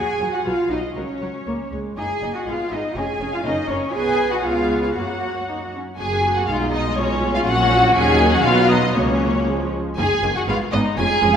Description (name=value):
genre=quick classical-period movement for string orchestra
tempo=120 BPM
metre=2/4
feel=rubato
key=F# major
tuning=A4 = 439 Hz
part: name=muted studio violin section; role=melody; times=0.0-11.4 s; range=A#4 to G#5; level=-23 LUFS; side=left 2 dB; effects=none
part: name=muted studio violin section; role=second line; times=0.0-11.3 s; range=C#4 to G#5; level=-23 LUFS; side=left 1 dB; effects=none
part: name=muted studio viola section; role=accompaniment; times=0.0-11.3 s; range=D#3 to B4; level=-24 LUFS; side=equal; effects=none
part: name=muted studio cello section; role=bass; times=0.0-11.3 s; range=E#2 to G#4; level=-25 LUFS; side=right 1 dB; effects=none
part: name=muted studio double bass section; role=bass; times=0.2-11.3 s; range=E#1 to F#2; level=-26 LUFS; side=right 2 dB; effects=none
room=wet recital hall reverb, RT60 1.7 s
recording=none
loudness=-18 LUFS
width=side -8 dB against mid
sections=0.0-6.0 A section; 6.0-11.4 A section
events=none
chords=0.4 B; 1.0 F#5; 1.5 C#5; 2.0 D#m; 2.5 G#m; 3.0 C#; 3.4 F#; 3.9 B; 4.4 C#7; 4.9 F#; 6.5 G#m/B; 7.0 C#7/B; 7.5 F#/A#; 8.0 D#m7; 8.5 B; 9.0 F#/C#; 9.5 C#; 10.0 D#m; 10.5 G#m